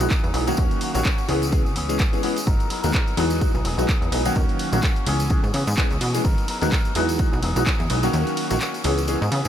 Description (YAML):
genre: filtered disco house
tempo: 127 BPM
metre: 4/4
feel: swing 57% on 16ths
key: unclear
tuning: A4 = 442 Hz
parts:
  - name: bright grand piano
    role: accompaniment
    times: 0.0-9.2 s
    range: D#3 to B4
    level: -25 LUFS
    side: left 1 dB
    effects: phaser, sidechain pumping
  - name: electric guitar with an envelope filter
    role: riff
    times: 0.0-9.5 s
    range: E3 to A#4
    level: -30 LUFS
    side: left 2 dB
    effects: sidechain pumping
  - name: plucky analog bass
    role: bass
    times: 0.0-9.5 s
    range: E1 to C#3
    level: -24 LUFS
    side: equal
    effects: sidechain pumping
  - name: punchy analog drum machine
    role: drums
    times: 0.0-9.5 s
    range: handclaps, hi-hat, ride cymbal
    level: -29 LUFS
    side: equal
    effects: sidechain pumping on hats, sidechain pumping on cymbals
  - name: tambourine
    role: percussion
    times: 0.0-9.5 s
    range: none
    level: -36 LUFS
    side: left 1 dB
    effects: sidechain pumping on perc
  - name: electronic kick drum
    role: drums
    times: 0.1-7.8 s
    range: none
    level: -22 LUFS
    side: equal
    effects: none
room: light reverb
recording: none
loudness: -19 LUFS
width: side -10 dB against mid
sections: 0.0-9.5 A section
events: kick drops out 8.1-9.5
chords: 0.0 Emaj9; 0.6 D#m7; 1.3 C#m7; 2.5 G#m9; 3.2 Emaj9; 4.4 D#m7; 5.1 C#m7; 6.2 G#m9; 7.0 Emaj9; 8.1 D#m7; 8.8 C#m7